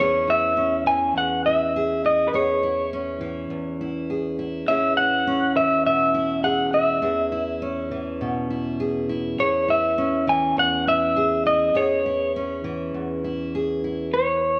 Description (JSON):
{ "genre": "folk", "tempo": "102 BPM", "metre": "4/4", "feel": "straight", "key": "unclear", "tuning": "A4 = 436 Hz", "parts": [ { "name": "electric guitar through a small old amp", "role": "melody", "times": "0.0-14.6 s", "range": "B4 to G#5", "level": "-22 LUFS", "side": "equal", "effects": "harmonic tremolo, analog delay" }, { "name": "fingerpicked steel-string acoustic guitar", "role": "accompaniment", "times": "0.0-14.6 s", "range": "E2 to G#4", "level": "-28 LUFS", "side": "equal", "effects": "none" } ], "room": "moderate large studio reverb, RT60 0.9 s", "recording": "none", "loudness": "-22 LUFS", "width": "mono", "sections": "0.0-14.1 A section", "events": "none", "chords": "0.0 C#m/E; 4.7 E6; 9.4 C#m/E", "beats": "0.57 1.16 1.74 | 2.33 2.92 3.51 4.09 | 4.68 5.27 5.86 6.45 | 7.04 7.62 8.21 8.80 | 9.39 9.98 10.57 11.17 | 11.76 12.35 12.94 13.54 | 14.13" }